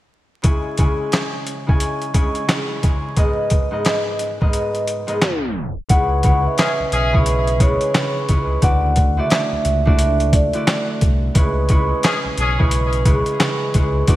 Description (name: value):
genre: hip hop, boom-bap hip-hop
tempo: 88 BPM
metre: 4/4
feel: swing 63% on 16ths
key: C# dorian, C# phrygian from 5.9 s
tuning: A4 = 440 Hz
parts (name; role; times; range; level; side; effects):
- concert harp; accompaniment; 0.4-14.2 s; G#2 to G#5; -21 LUFS; equal; cassette tape, high-pass filter, low-pass filter
- boom bap sampler-style drum kit; drums; 0.4-14.2 s; handclaps, hi-hat, kick drum, snare drum; -18 LUFS; equal; none
- vibraphone with soft mallets; melody; 5.9-10.9 s; C#5 to F#5; -22 LUFS; equal; high-pass filter, low-pass filter, digital delay
- sub bass with octave; bass; 5.9-14.2 s; B1 to D2; -20 LUFS; equal; none
- clear trumpet section; stabs; 6.6-7.1, 12.0-12.6 s; C#4 to G#4; -24 LUFS; left 2 dB; high-pass filter, low-pass filter, digital delay
room: moderate lush hall reverb, RT60 1.7 s, small room ambience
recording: bright 1980s-style digital production, vinyl crackle, tape stop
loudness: -15 LUFS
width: side -15 dB against mid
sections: 0.4-5.9 A section; 5.9-14.2 B section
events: break 4.5-5.9; tape stop 5.2-5.9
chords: 0.4 C#m; 3.2 G#madd9; 5.9 C#m7; 8.6 Dadd9; 11.4 C#m7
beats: | 0.45 1.13 1.81 2.49 | 3.17 3.85 4.54 5.22 | 5.90 6.58 7.26 7.95 | 8.63 9.31 9.99 10.67 | 11.35 12.04 12.72 13.40 | 14.08